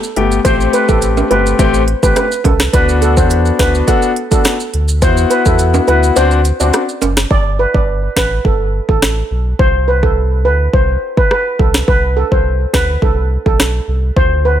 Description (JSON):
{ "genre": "dancehall", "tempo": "105 BPM", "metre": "4/4", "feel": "straight", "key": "G major from 7.3 s", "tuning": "A4 = 439 Hz", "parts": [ { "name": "maracas and timbales", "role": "percussion", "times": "0.0-7.3 s", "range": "none", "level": "-22 LUFS", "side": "right 7 dB", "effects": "none" }, { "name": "warm concert grand piano", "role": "accompaniment", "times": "0.2-6.8 s", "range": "A3 to G4", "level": "-15 LUFS", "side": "left 6 dB", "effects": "none" }, { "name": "sub bass with octave", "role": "bass", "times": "0.2-14.6 s", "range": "F#1 to E2", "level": "-15 LUFS", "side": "equal", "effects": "none" }, { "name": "afro-pop drum kit", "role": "drums", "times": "0.2-14.3 s", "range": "hi-hat, kick drum, rim click, snare drum", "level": "-14 LUFS", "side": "equal", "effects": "none" }, { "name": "steel pan", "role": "melody", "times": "0.4-14.5 s", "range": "A4 to D5", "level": "-16 LUFS", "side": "right 2 dB", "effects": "tape echo" } ], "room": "light reverb, small room ambience", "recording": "none", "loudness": "-11 LUFS", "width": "side -10 dB against mid", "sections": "0.0-7.3 A section; 7.3-14.6 B section", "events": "kick muted 6.2-7.3", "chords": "0.5 Am7; 2.7 D6; 6.2 D7; 7.3 Gadd9; 9.6 Csus2; 11.9 Amadd9 (rootless)" }